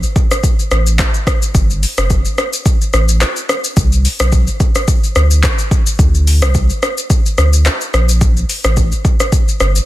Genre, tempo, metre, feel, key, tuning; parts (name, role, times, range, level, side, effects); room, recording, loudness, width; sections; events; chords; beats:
afrobeats; 108 BPM; 4/4; swing 55% on 16ths; A4 = 440 Hz
warm sub bass; bass; 0.0-9.8 s; F#1 to D2; -12 LUFS; equal
afro-pop drum kit; drums; 0.0-9.9 s; handclaps, hi-hat, kick drum, rim click, shaker; -13 LUFS; equal; overdrive
little or no reverb; dense, heavily limited modern master; -11 LUFS; side -16 dB against mid
0.0-9.9 A section
0.43 0.99 | 1.55 2.10 2.66 3.21 | 3.77 4.32 4.88 5.43 | 5.99 6.55 7.10 7.66 | 8.21 8.77 9.32